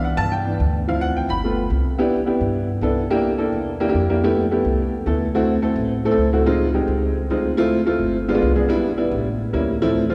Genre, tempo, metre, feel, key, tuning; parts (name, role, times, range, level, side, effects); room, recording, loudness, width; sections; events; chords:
Afro-Cuban jazz; 214 BPM; 4/4; straight; C major; A4 = 440 Hz
warm upright piano; accompaniment; 0.0-10.1 s; E3 to B5; -21 LUFS; equal
upright bass; bass; 0.0-10.1 s; G1 to G2; -26 LUFS; equal
wet church reverb, RT60 3.6 s; recorded in a church or concert hall; -20 LUFS; mono
0.0-2.0 A section; 2.0-10.1 B section
upright piano solo 0.0-2.0
0.0 Cmaj7; 0.9 Dm7; 1.4 G9; 2.0 Cmaj7; 3.1 C9; 4.2 Fmaj9#11; 5.3 D9; 6.5 Dbmaj9; 7.6 Dm7; 8.1 G7b9; 8.7 Cmaj7; 9.3 A7b9